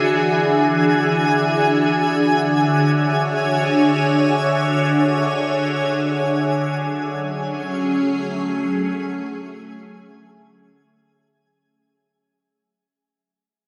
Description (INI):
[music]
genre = ambient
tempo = free time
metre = none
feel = none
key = unclear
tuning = A4 = 441 Hz
[part]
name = evolving wavetable pad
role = sustained chords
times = 0.0-11.6 s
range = D3 to E5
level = -20 LUFS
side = equal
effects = ensemble chorus, built-in reverb, phaser
[part]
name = analog drone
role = drone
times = 0.0-11.6 s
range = D3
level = -32 LUFS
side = equal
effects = chorus
[part]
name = twinkling granular texture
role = texture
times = 0.0-11.6 s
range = G#4 to G#5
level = -25 LUFS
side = equal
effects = built-in reverb
[sound]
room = wet cathedral reverb, RT60 5.2 s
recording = cassette tape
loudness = -19 LUFS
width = mono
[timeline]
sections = 0.0-11.6 A section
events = fade-in on synth drone 0.0-11.6; fade-out 5.2-11.6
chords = 0.0 Dmaj7; 6.8 F#m7